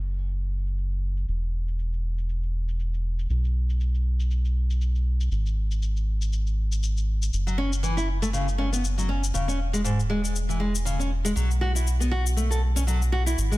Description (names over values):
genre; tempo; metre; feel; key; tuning
afro house; 119 BPM; 4/4; swing 56% on 16ths; unclear; A4 = 440 Hz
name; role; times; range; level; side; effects
round analog bass; bass; 0.0-13.6 s; E1 to B1; -24 LUFS; equal; tube saturation
shaker; drums; 0.2-13.6 s; none; -35 LUFS; left 6 dB; low-pass filter on perc, studio reverb, low-pass filter on toms, soft clipping on snare, low-pass filter on snare, low-pass filter on cymbals
nylon-string guitar; arpeggios; 7.5-13.6 s; G#2 to A4; -27 LUFS; equal; digital delay
room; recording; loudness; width
digital ambience; dense, heavily limited modern master; -23 LUFS; side -18 dB against mid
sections
0.0-13.6 A section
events
none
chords
0.0 N.C.; 7.3 F#5; 9.3 E; 11.4 B5